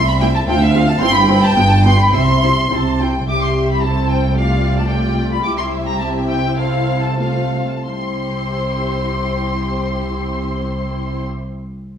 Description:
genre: quick classical-period movement for string orchestra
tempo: 90-113 BPM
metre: 2/4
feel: rubato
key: C major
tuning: A4 = 443 Hz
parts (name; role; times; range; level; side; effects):
- rich studio violin section; melody; 0.0-11.2 s; E5 to D6; -20 LUFS; equal; none
- warm studio violin section; second line; 0.0-11.2 s; G4 to A5; -24 LUFS; equal; none
- dark studio cello section; bass; 0.0-11.2 s; C2 to C3; -20 LUFS; right 1 dB; none
- warm studio double bass section; bass; 0.0-11.2 s; G1 to D2; -21 LUFS; right 1 dB; none
- dark studio viola section; accompaniment; 0.2-11.2 s; G3 to G4; -23 LUFS; left 2 dB; none
room: wet stone room reverb, RT60 1.2 s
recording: none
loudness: -14 LUFS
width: side -8 dB against mid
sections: 0.0-3.3 A section; 3.3-7.9 B section; 7.9-10.5 C section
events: slowing down 4.9-7.9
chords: 0.5 Dm7; 1.0 C/G; 1.6 G7; 2.1 C; 4.4 G5/C; 5.5 C; 6.6 F/C; 7.9 C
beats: 0.49 | 1.03 1.57 | 2.13 2.71 | 3.29 3.84 | 4.38 4.92 | 5.45 6.01 | 6.59 7.20 | 7.86 8.52 | 9.17 9.83

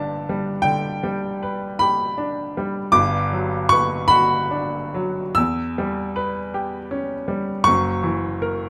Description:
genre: classical, romantic nocturne for solo piano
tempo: 52 BPM (dotted quarters)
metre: 12/8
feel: rubato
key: unclear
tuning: A4 = 441 Hz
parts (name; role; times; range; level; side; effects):
- clear baby grand piano; solo; 0.0-8.7 s; F#1 to E6; -22 LUFS; equal; none
room: light reverb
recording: none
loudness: -22 LUFS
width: mono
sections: 0.0-8.7 A section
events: none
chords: 0.0 G; 2.9 Gmaj7; 5.4 C#m7b5/E; 7.7 F#7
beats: 0.65 1.80 | 2.94 4.09 5.36 6.53 | 7.66

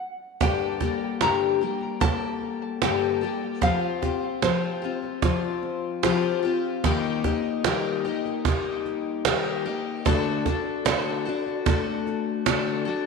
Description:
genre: acoustic folk duo or small band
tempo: 75 BPM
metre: 4/4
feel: straight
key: G minor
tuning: A4 = 440 Hz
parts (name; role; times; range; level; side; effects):
- nylon-string guitar; melody; 0.0-6.4 s; C5 to Bb5; -30 LUFS; equal; tape echo
- picked twelve-string acoustic guitar; accompaniment; 0.4-13.1 s; G2 to A4; -25 LUFS; left 8 dB; none
- cajon; percussion; 0.4-12.8 s; none; -26 LUFS; right 7 dB; none
room: wet plate reverb, RT60 2.5 s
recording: 1960s-style stereo with parts hard left and right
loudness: -23 LUFS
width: side -4 dB against mid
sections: 0.4-13.1 A section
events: stop 0.0-0.4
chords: 0.4 Gmadd9; 3.6 Fsus2; 6.8 Eb; 10.1 D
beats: | 0.41 1.22 2.02 2.83 | 3.63 4.43 5.24 6.04 | 6.85 7.65 8.46 9.26 | 10.06 10.87 11.67 12.47

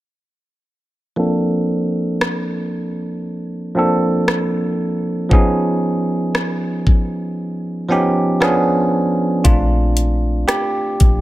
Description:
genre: contemporary R&B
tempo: 58 BPM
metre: 4/4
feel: swing 54% on 16ths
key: Bb major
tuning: A4 = 442 Hz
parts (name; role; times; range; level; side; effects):
- bell-like tine electric piano; accompaniment; 1.2-11.2 s; F3 to A4; -17 LUFS; right 1 dB; low-pass filter
- smooth R&B drum kit; drums; 2.2-11.2 s; hi-hat, kick drum, rim click; -16 LUFS; equal; none
- soft 808-style bass; bass; 9.5-11.2 s; Bb1; -15 LUFS; equal; none
room: light reverb, digital ambience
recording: none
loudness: -15 LUFS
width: side -16 dB against mid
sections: 1.2-9.5 A section; 9.5-11.2 B section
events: filter sweep on tine electric piano 1.2-9.5; kick muted 7.4-9.5; tine electric piano solo 9.5-11.2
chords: 1.2 Bbmaj7; 5.3 Db7; 8.4 Db7b9; 9.5 Bbmaj7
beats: | 1.18 2.21 3.25 4.28 | 5.32 6.35 7.38 8.42 | 9.45 10.49

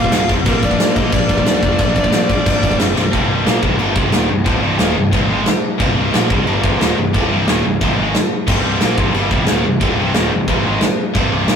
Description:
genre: heavy metal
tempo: 180 BPM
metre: 4/4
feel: straight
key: C minor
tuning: A4 = 440 Hz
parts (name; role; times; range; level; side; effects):
- high-gain lead guitar; melody; 0.0-2.8 s; Bb4 to F5; -19 LUFS; left 1 dB; distortion
- high-gain lead guitar; second line; 0.0-2.8 s; Bb3 to F4; -26 LUFS; equal; distortion
- heavy high-gain guitar; riff; 0.0-11.6 s; C2 to Bb3; -23 LUFS; right 1 dB; distortion
- high-gain distorted guitar; riff; 0.0-11.6 s; C2 to Bb3; -23 LUFS; right 4 dB; distortion
- scooped high-gain guitar; riff; 0.0-11.6 s; C2 to Bb3; -21 LUFS; left 5 dB; distortion
- fuzz picked electric bass; bass; 0.0-11.6 s; C1 to Bb2; -21 LUFS; equal; overdrive
- big rock drum kit; drums; 0.0-11.6 s; china cymbal, crash cymbal, kick drum, snare drum; -16 LUFS; equal; none
room: moderate booth ambience, RT60 0.2 s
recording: rough rehearsal-room recording, warm saturation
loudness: -13 LUFS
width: side -7 dB against mid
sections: 0.0-3.1 A section; 3.1-11.6 B section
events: drum fill 3.0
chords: 0.1 Db5; 0.3 F5; 0.5 Bb; 2.8 F#5; 3.0 C5; 3.1 Cm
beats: 0.13 | 0.46 0.80 1.13 1.46 | 1.79 2.13 2.46 2.79 | 3.13 3.46 3.79 4.13 | 4.46 4.80 5.13 5.46 | 5.80 6.13 6.47 6.80 | 7.14 7.47 7.80 8.14 | 8.47 8.81 9.14 9.48 | 9.81 10.15 10.48 10.82 | 11.15 11.49

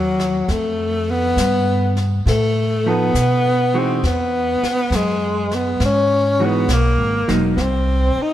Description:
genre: jazz ballad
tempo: 68 BPM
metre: 4/4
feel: swing 67% on 8ths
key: unclear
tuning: A4 = 441 Hz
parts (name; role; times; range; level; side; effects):
- breathy tenor saxophone; melody; 0.0-8.3 s; Gb3 to Eb4; -18 LUFS; left 1 dB; none
- upright bass; bass; 0.0-8.2 s; E1 to B2; -20 LUFS; equal; none
- jazz brush drum kit; drums; 0.2-8.3 s; brushed snare drum, hi-hat, snare drum; -31 LUFS; left 2 dB; none
- vintage hollow-body jazz guitar; accompaniment; 2.9-7.5 s; Fb3 to A4; -22 LUFS; right 2 dB; none
room: moderate plate reverb, RT60 2.4 s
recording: heard from further back in the room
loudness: -15 LUFS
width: side -12 dB against mid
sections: 0.0-8.3 A section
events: none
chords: 0.5 F7#11; 4.0 Emaj9; 7.6 N.C.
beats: | 0.49 1.37 2.26 3.14 | 4.03 4.92 5.80 6.68 | 7.57

